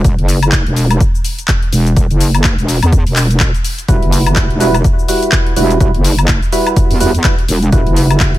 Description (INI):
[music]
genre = bass house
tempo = 125 BPM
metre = 4/4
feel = swing 58% on 16ths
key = E minor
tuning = A4 = 440 Hz
[part]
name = wobble bass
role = bass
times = 0.0-8.4 s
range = E1 to E2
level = -12 LUFS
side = equal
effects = chorus, overdrive, sidechain pumping
[part]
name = electronic kick drum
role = drums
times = 0.0-8.3 s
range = none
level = -14 LUFS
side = equal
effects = none
[part]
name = house drum kit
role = drums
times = 0.0-8.4 s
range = handclaps, hi-hat, shaker, woodblock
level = -18 LUFS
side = left 2 dB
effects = none
[part]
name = percussive organ stab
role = stabs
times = 3.9-8.4 s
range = G3 to B4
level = -16 LUFS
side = right 2 dB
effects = analog chorus, sidechain pumping, ping-pong delay
[sound]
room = little or no reverb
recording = none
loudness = -10 LUFS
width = side -15 dB against mid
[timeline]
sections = 0.0-8.4 A section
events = none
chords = 0.0 Emadd9